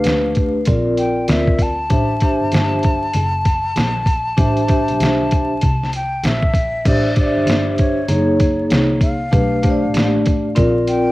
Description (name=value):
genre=hip hop, jazz-hop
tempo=97 BPM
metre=4/4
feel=swing 62% on 16ths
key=unclear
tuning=A4 = 440 Hz
part: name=breathy jazz flute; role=melody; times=0.0-11.1 s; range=C#5 to A5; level=-23 LUFS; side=left 1 dB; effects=cassette tape, analog delay
part: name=vibraphone with soft mallets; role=accompaniment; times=0.0-11.1 s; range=A3 to E5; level=-17 LUFS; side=equal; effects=cassette tape
part: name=warm double bass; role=bass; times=0.0-11.1 s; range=F#1 to D2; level=-22 LUFS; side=equal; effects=none
part: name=dusty soul sampler-style drum kit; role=drums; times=0.0-11.1 s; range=crash cymbal, hi-hat, kick drum, snare drum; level=-18 LUFS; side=equal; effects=cassette tape
room=little or no reverb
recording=home recording on cassette, vinyl crackle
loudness=-14 LUFS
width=side -18 dB against mid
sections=0.0-6.9 A section; 6.9-11.1 A section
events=none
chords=0.0 Bm7b5; 0.7 Bbadd9; 1.9 Am7; 8.1 F#; 9.3 Bm7b5; 10.6 Bbadd9